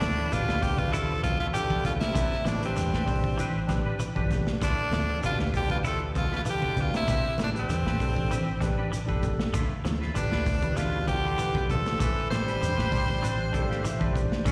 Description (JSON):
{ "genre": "afrobeat", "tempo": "98 BPM", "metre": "4/4", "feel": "straight", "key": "D dorian", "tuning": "A4 = 441 Hz", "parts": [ { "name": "raspy tenor saxophone", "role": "melody", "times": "0.0-14.5 s", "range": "C4 to C5", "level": "-33 LUFS", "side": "equal", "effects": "slapback echo" }, { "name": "trombone with metal mute", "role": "second line", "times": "0.0-14.1 s", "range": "G2 to G3", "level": "-40 LUFS", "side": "equal", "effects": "slapback echo, tape echo" }, { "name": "clean electric guitar", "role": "arpeggios", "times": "0.0-14.5 s", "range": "D3 to E4", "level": "-40 LUFS", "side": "equal", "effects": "none" }, { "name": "deep dub fingered electric bass", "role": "bass", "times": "0.0-14.5 s", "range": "G1 to E2", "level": "-33 LUFS", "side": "equal", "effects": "none" }, { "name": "crunchy breakbeat drum kit", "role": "drums", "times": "0.0-14.5 s", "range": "hi-hat, kick drum, snare drum", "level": "-34 LUFS", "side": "equal", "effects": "none" }, { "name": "congas", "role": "percussion", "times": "0.0-14.5 s", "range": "none", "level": "-37 LUFS", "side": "equal", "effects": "none" }, { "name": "shekere", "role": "percussion", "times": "0.0-14.5 s", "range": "none", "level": "-39 LUFS", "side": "equal", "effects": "none" }, { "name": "semi-hollow electric guitar", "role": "stabs", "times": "0.2-14.5 s", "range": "A3 to B4", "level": "-43 LUFS", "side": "equal", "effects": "ensemble chorus, slapback echo" }, { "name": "barky tine electric piano", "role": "accompaniment", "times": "0.3-14.5 s", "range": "D4 to G5", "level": "-39 LUFS", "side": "equal", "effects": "overdrive, slapback echo" } ], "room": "small room ambience", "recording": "live gig heard through the venue's PA, recital hall reverb", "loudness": "-27 LUFS", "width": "mono", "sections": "0.0-14.5 A section", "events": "tine electric piano fill 13.2-14.5", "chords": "0.0 Dm69; 2.2 Am11; 4.6 Dm69; 7.1 Am11; 9.5 Dm69; 12.0 Am11" }